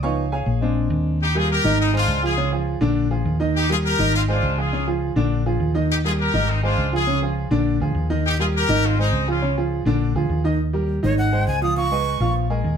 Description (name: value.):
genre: latin.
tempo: 204 BPM.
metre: 4/4.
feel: straight.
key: Eb major.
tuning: A4 = 439 Hz.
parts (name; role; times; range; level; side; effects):
clear baby grand piano; accompaniment; 0.0-12.7 s; Db3 to Db6; -23 LUFS; right 2 dB; none.
hollow-body short-scale fingered electric bass; bass; 0.0-12.8 s; Ab1 to Eb2; -22 LUFS; equal; none.
bright horn section; melody; 1.2-9.6 s; C4 to Bb4; -22 LUFS; left 3 dB; none.
breathy bright jazz flute; melody; 11.0-12.3 s; Db5 to Eb6; -24 LUFS; right 1 dB; tape echo.
room: moderate studio reverb, RT60 0.8 s.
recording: heard from further back in the room.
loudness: -18 LUFS.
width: side -7 dB against mid.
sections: 0.0-1.2 A section; 1.2-10.6 B section; 10.6-12.8 A section.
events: grand piano solo 0.0-1.2; flute solo 10.6-12.8.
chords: 0.0 Db7; 0.6 Bb7; 1.2 Eb; 1.8 Ab6; 2.4 Db; 3.0 Bb7; 3.5 Eb; 4.1 Ab6; 4.7 Db; 5.3 Bb7; 5.9 Eb; 6.5 Ab6; 7.1 Db; 7.7 Bb7; 8.2 Eb; 8.8 Ab6; 9.4 Db; 10.0 Bb7; 10.6 Eb; 11.2 Ab6; 11.8 Db7.